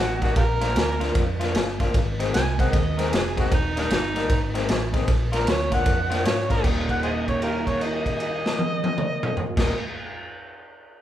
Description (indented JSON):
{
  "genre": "electric blues shuffle",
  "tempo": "153 BPM",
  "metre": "4/4",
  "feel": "swing 64% on 8ths",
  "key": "Eb major",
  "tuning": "A4 = 440 Hz",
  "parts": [
    { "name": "overdriven harmonica", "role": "melody", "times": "0.0-9.7 s", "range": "Eb4 to Ab5", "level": "-27 LUFS", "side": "equal", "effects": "none" },
    { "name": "electric guitar through a small old amp", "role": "riff", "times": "0.0-9.7 s", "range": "Eb2 to F4", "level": "-28 LUFS", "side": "left 2 dB", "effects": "none" },
    { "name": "vintage muted fingered electric bass", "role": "bass", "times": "0.0-9.7 s", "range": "Eb1 to Ab2", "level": "-28 LUFS", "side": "right 1 dB", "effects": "none" },
    { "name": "raw garage drum kit", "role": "drums", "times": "0.2-9.7 s", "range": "crash cymbal, kick drum, ride cymbal, snare drum, toms", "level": "-24 LUFS", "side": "equal", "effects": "none" }
  ],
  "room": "light reverb",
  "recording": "band playing live in one room",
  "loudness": "-21 LUFS",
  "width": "side -12 dB against mid",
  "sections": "0.0-6.6 A section; 6.6-9.8 B section",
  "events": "held note 6.6-9.5",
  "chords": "0.4 Bb; 1.9 Ab; 3.5 Eb; 4.3 Ab; 5.1 Bb7; 6.6 Eb",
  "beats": "| 0.36 0.76 1.15 1.55 | 1.94 2.33 2.73 3.12 | 3.51 3.90 4.30 4.69 | 5.08 5.47 5.86 6.25 | 6.64 7.03 7.42 7.81 | 8.20 8.59 8.98 9.37"
}